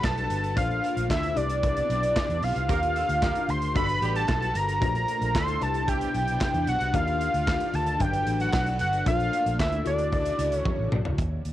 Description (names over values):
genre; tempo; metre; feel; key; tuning
early-eighties boogie funk; 113 BPM; 4/4; straight; unclear; A4 = 442 Hz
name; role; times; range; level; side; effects
fat analog lead; melody; 0.0-10.9 s; D5 to C6; -27 LUFS; equal; cassette tape
funky polysynth comp; accompaniment; 0.0-11.2 s; F#3 to D5; -33 LUFS; left 10 dB; chorus, cassette tape
string machine, violins; sustained chords; 0.0-11.2 s; Bb2 to B4; -36 LUFS; right 1 dB; ensemble chorus, cassette tape
vintage muted fingered electric bass; bass; 0.0-11.5 s; G1 to E2; -29 LUFS; equal; none
modern studio drum kit; drums; 0.0-11.5 s; handclaps, hi-hat, kick drum, snare drum, toms; -30 LUFS; equal; cassette tape
mellow horn section; second line; 2.7-6.1 s; B3 to Bb4; -36 LUFS; right 11 dB; cassette tape
room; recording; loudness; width
light reverb, small room ambience; home recording on cassette; -23 LUFS; side -13 dB against mid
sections
0.0-11.2 A section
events
drum fill 10.7-11.2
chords
0.0 Gmaj9; 0.6 Bbmaj9; 1.4 Cmaj9; 2.7 Ebmaj9; 3.8 Gmaj9; 4.8 Bbmaj9; 5.6 Cmaj9; 6.9 Ebmaj9; 8.0 Gmaj9; 9.1 Bbmaj9; 9.9 Dmaj9